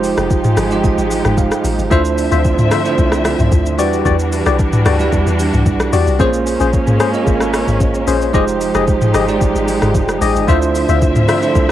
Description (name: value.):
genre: amapiano.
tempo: 112 BPM.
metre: 4/4.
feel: straight.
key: unclear.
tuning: A4 = 440 Hz.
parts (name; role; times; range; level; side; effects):
bell-like tine electric piano; accompaniment; 0.0-11.7 s; G3 to Ab5; -18 LUFS; right 6 dB; fast stereo tremolo, cassette tape.
warm studio string section; sustained chords; 0.0-11.7 s; D3 to E5; -20 LUFS; left 1 dB; cassette tape.
deep log drum bass; bass; 0.0-11.7 s; F1 to E2; -19 LUFS; left 1 dB; none.
smooth R&B drum kit; drums; 0.0-11.7 s; hi-hat, kick drum, rim click, shaker, toms; -17 LUFS; left 1 dB; overdrive, cassette tape.
percussive organ stab; stabs; 1.9-11.4 s; Db4 to E5; -19 LUFS; left 8 dB; chorus, cassette tape, analog delay.
room: light reverb, digital ambience.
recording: home recording on cassette.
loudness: -12 LUFS.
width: side -12 dB against mid.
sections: 0.0-11.7 A section.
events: tine electric piano fill 0.3-1.9.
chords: 0.0 Fm9; 1.9 Dm9; 3.8 Em9; 6.2 Bbm9; 8.3 Fm9; 10.5 Dm9.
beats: 0.30 0.84 1.38 | 1.91 2.45 2.98 3.52 | 4.05 4.59 5.13 5.66 | 6.20 6.73 7.27 7.80 | 8.34 8.88 9.41 9.95 | 10.48 11.02 11.55.